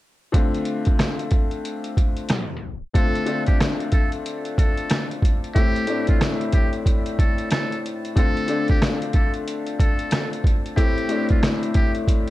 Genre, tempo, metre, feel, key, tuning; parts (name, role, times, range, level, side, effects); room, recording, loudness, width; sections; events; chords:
hip hop, boom-bap hip-hop; 92 BPM; 4/4; swing 62% on 16ths; D minor; A4 = 441 Hz
clear baby grand piano; accompaniment; 0.3-12.3 s; A2 to F4; -25 LUFS; left 3 dB; high-pass filter, low-pass filter, plate reverb
trip hop sampler-style drum kit; drums; 0.3-12.3 s; hi-hat, kick drum, rim click, snare drum; -20 LUFS; equal
trumpet with metal mute; melody; 2.9-11.9 s; F4 to A4; -30 LUFS; right 1 dB; high-pass filter, low-pass filter, tape echo, plate reverb
light reverb; dark, warm production, tape stop; -19 LUFS; side -16 dB against mid
0.3-2.9 A section; 2.9-12.3 B section
tape stop 2.3-2.9
0.3 Dm7; 5.6 Am; 8.2 Dm7; 10.8 Am